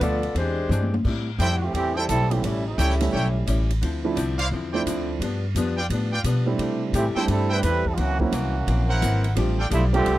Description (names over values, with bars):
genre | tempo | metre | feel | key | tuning
jazz, big band swing | 173 BPM | 4/4 | swing 64% on 8ths | A minor | A4 = 440 Hz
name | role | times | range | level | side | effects
mellow saxophone section | melody | 0.0-0.9 s | G#3 to D5 | -26 LUFS | left 2 dB | none
archtop guitar, miked and amplified | accompaniment | 0.0-10.2 s | F#2 to G#4 | -30 LUFS | left 5 dB | none
warm baby grand piano | accompaniment | 0.0-0.2, 2.3-10.0 s | F3 to F4 | -27 LUFS | right 4 dB | none
upright bass | bass | 0.0-10.2 s | G#1 to C3 | -24 LUFS | equal | none
swinging big-band drum kit | drums | 0.0-10.2 s | crash cymbal, hi-hat, kick drum, ride cymbal, snare drum, toms | -34 LUFS | equal | none
clear trombone section | second line | 1.4-3.7, 7.0-10.2 s | D3 to B4 | -26 LUFS | right 3 dB | none
brilliant trumpet section | stabs | 1.4-9.7 s | E4 to G5 | -26 LUFS | right 2 dB | none
room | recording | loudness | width
little or no reverb | dry, close 1970s-style studio recording | -21 LUFS | side -15 dB against mid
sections
0.0-1.0 A section; 1.0-10.2 B section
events
drum fill 0.7-1.0; trombone section solo 1.0-10.2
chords
0.4 E7alt; 1.0 Am7; 2.4 A7; 3.8 Dm9; 5.2 G7; 6.6 C6; 8.0 F#7#11; 9.4 F69